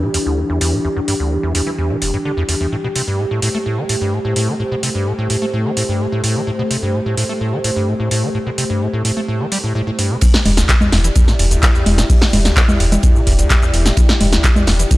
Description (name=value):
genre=acid house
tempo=128 BPM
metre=4/4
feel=straight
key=E minor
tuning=A4 = 440 Hz
part: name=dark analog pad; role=sustained chords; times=0.0-15.0 s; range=E3 to D5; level=-22 LUFS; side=equal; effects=chorus, sidechain pumping
part: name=acid bass, square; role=riff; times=0.0-15.0 s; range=E1 to A3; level=-20 LUFS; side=equal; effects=overdrive, wide subtle chorus, sidechain pumping, tape echo
part: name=electro analog drum machine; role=drums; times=0.1-15.0 s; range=congas, crash cymbal, handclaps, hi-hat, shaker, snare drum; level=-18 LUFS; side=equal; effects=none
part: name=damped 70s drum kit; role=drums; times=10.2-15.0 s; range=hi-hat, ride cymbal, snare drum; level=-31 LUFS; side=right 3 dB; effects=none
part: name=electronic kick drum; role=drums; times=10.2-15.0 s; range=none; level=-13 LUFS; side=equal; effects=none
part: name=warm sub bass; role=bass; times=10.5-14.8 s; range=E1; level=-16 LUFS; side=equal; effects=sidechain pumping
room=light reverb, small room ambience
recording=dry, gritty hardware recording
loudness=-14 LUFS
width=side -18 dB against mid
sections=0.0-10.2 A section; 10.2-15.0 B section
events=drop 10.2-15.0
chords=0.0 Em7; 2.7 Am7; 10.2 Em7